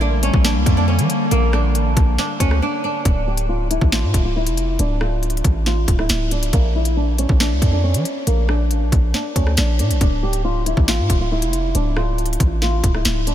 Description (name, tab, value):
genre	hip hop, drill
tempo	138 BPM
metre	4/4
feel	half-time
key	D harmonic minor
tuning	A4 = 437 Hz
part	flamenco guitar	melody	0.0-13.3 s	Bb3 to G4	-23 LUFS	equal	wide subtle chorus, low-pass filter, ping-pong delay
part	warbly tape-like pad	sustained chords	0.0-3.0 s	D3 to Bb3	-24 LUFS	left 1 dB	chorus, built-in reverb
part	hard-hitting 808-style bass	bass	0.0-13.3 s	D1 to F3	-19 LUFS	equal	none
part	drill drum kit	drums	0.2-13.3 s	finger snaps, hi-hat, kick drum, rim click, snare drum	-21 LUFS	equal	none
room	light reverb, digital ambience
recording	none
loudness	-16 LUFS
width	side -11 dB against mid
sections	0.0-3.1 A section; 3.1-13.3 B section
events	break 2.6-3.1; filter sweep on nylon-string guitar 3.1-13.3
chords	0.0 Bb6; 3.1 Dmadd9; 6.5 Bb; 10.0 Dmadd9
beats	0.01 0.45 0.88 | 1.31 1.75 2.18 2.62 | 3.05 3.49 3.92 4.36 | 4.79 5.23 5.66 6.10 | 6.53 6.97 7.40 7.84 | 8.27 8.71 9.14 9.57 | 10.01 10.45 10.88 11.31 | 11.75 12.18 12.62 13.05